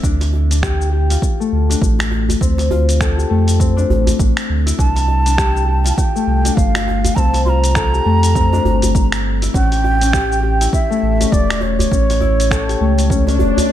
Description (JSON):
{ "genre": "organic downtempo", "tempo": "101 BPM", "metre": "4/4", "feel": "swing 60% on 16ths", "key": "D minor", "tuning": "A4 = 439 Hz", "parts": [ { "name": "Celtic harp", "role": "arpeggios", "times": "0.0-13.7 s", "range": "A3 to A4", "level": "-20 LUFS", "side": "left 6 dB", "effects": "digital delay" }, { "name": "warm sub bass", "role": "bass", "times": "0.0-13.5 s", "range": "E1 to F2", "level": "-16 LUFS", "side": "right 1 dB", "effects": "sidechain pumping" }, { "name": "dusty soul sampler-style drum kit", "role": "drums", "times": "0.0-13.7 s", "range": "finger snaps, hi-hat, shaker", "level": "-24 LUFS", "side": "equal", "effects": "none" }, { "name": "electronic kick drum", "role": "drums", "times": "0.0-13.2 s", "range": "none", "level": "-17 LUFS", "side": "right 1 dB", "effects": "none" }, { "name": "djembe", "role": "percussion", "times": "0.0-13.7 s", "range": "none", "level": "-24 LUFS", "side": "right 3 dB", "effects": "none" }, { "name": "breathy bansuri", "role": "melody", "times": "4.8-13.7 s", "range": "C#5 to C6", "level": "-20 LUFS", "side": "right 2 dB", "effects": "digital delay" }, { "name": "swell", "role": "sound effects", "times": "13.2-13.7 s", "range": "none", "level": "-20 LUFS", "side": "right 2 dB", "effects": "none" } ], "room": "light reverb", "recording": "none", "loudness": "-13 LUFS", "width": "side -11 dB against mid", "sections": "0.0-13.7 A section", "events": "swell 13.2-13.7", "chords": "0.0 Dm9; 4.8 C7sus4; 9.5 A7" }